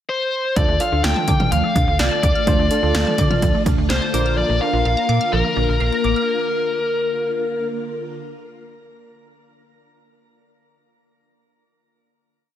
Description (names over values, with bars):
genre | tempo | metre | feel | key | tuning
synth-pop | 126 BPM | 4/4 | straight | Bb major | A4 = 440 Hz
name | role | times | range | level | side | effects
biting lead guitar | melody | 0.1-7.7 s | Bb4 to G5 | -21 LUFS | left 2 dB | overdrive, tape echo, shimmer reverb
soft electric-piano-like synth keys | accompaniment | 0.6-5.5 s | D4 to C5 | -29 LUFS | right 3 dB | chorus, shimmer reverb
phased string machine | sustained chords | 0.6-8.1 s | D3 to F4 | -26 LUFS | equal | ensemble chorus, phaser, shimmer reverb
resonant blip pluck | arpeggios | 0.6-6.3 s | F3 to F6 | -28 LUFS | right 3 dB | phaser, tape echo, shimmer reverb
slap-like FM bass | bass | 0.6-6.1 s | A1 to D3 | -21 LUFS | equal | none
punchy analog drum machine | drums | 0.6-4.2 s | hi-hat, kick drum, snare drum, toms | -20 LUFS | equal | none
room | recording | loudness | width
moderate plate reverb, RT60 1.9 s, digital ambience | none | -16 LUFS | side -11 dB against mid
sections
0.0-0.6 pickup bar; 0.6-8.2 verse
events
none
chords
0.0 N.C.; 0.6 Dm; 4.1 Bb